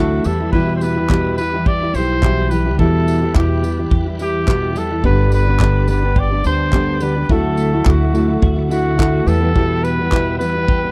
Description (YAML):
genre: acoustic pop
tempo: 106 BPM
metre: 4/4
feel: swing 55% on 16ths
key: E minor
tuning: A4 = 440 Hz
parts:
  - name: warm trumpet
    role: melody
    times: 0.0-10.9 s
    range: F#4 to D5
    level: -24 LUFS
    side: equal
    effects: none
  - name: fingerpicked plugged-in steel-string acoustic guitar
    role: accompaniment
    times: 0.0-10.9 s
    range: E2 to G4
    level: -22 LUFS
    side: equal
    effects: none
  - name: bright tonewheel organ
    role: sustained chords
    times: 0.0-10.9 s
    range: G4 to F#6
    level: -35 LUFS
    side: equal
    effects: none
  - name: twelve-string electric guitar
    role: arpeggios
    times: 0.0-10.9 s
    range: E3 to G4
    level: -29 LUFS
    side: equal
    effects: none
  - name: upright bass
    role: bass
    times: 0.0-10.9 s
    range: G1 to E2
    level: -21 LUFS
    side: equal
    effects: none
  - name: natural country drum kit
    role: drums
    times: 0.2-10.8 s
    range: handclaps, kick drum, tambourine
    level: -20 LUFS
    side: equal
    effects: none
room: little or no reverb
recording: dry, close 1970s-style studio recording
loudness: -16 LUFS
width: mono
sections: 0.0-10.9 A section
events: none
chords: 0.2 Em; 5.0 G; 7.3 Dadd9; 9.3 Em